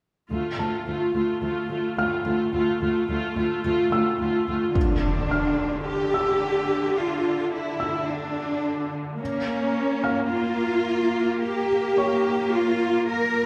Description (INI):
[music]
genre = cinematic, hybrid orchestral and electronic film score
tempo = 108 BPM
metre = 4/4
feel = straight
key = D harmonic minor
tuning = A4 = 442 Hz
[part]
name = warm symphonic viola section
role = accompaniment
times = 0.3-13.5 s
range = D3 to F4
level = -28 LUFS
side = equal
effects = none
[part]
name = warm symphonic cello section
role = bass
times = 0.3-13.5 s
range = D2 to Bb4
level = -28 LUFS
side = equal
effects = none
[part]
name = felt-muted upright piano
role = texture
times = 0.6-13.5 s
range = Db5 to F6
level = -35 LUFS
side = equal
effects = none
[part]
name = impact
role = sound effects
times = 4.8-7.0 s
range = none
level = -32 LUFS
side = equal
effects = none
[sound]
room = wet recital hall reverb, RT60 1.5 s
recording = recorded in a church or concert hall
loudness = -24 LUFS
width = mono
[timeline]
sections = 0.3-4.8 A section; 4.8-13.5 B section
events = impact 4.8-7.0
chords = 0.3 Dm; 9.2 Bbm